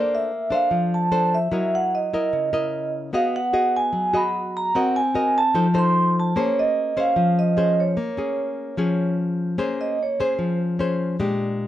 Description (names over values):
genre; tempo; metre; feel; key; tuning
bossa nova; 149 BPM; 4/4; straight; Bb minor; A4 = 440 Hz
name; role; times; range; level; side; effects
vibraphone with soft mallets; melody; 0.0-10.6 s; C5 to C6; -22 LUFS; right 2 dB; none
nylon-string guitar; accompaniment; 0.0-11.7 s; Bb2 to Eb5; -22 LUFS; left 2 dB; none
room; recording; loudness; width
moderate studio reverb, RT60 0.9 s; nothing above 10.9 kHz; -19 LUFS; side -12 dB against mid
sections
0.0-9.6 A section; 9.6-11.7 B section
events
vibraphone solo 9.6-11.7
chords
0.0 Bbmaj9; 1.5 Gb6; 3.1 B6; 4.7 Cm7b5; 5.5 F7; 6.4 Bbm9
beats
0.31 0.71 1.11 | 1.52 1.92 2.32 2.73 | 3.13 3.53 3.94 4.34 | 4.74 5.15 5.55 5.95 | 6.36 6.76 7.16 7.56 | 7.97 8.37 8.77 9.17 | 9.58 9.98 10.38 10.78 | 11.18 11.59